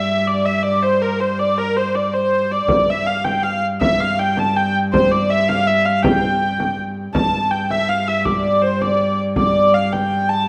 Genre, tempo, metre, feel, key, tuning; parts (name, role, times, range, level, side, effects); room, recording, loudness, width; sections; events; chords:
medieval dance; 108 BPM (dotted quarters); 6/8; straight; A4 = 440 Hz
dark hurdy-gurdy; melody; 0.0-10.5 s; Bb4 to A5; -19 LUFS; equal
warm viola da gamba; drone; 0.0-10.5 s; G2; -25 LUFS; equal
frame drum; percussion; 2.7-10.2 s; -25 LUFS; equal
wet recital hall reverb, RT60 1.4 s; -18 LUFS; mono
0.0-7.1 A section; 7.1-10.5 B section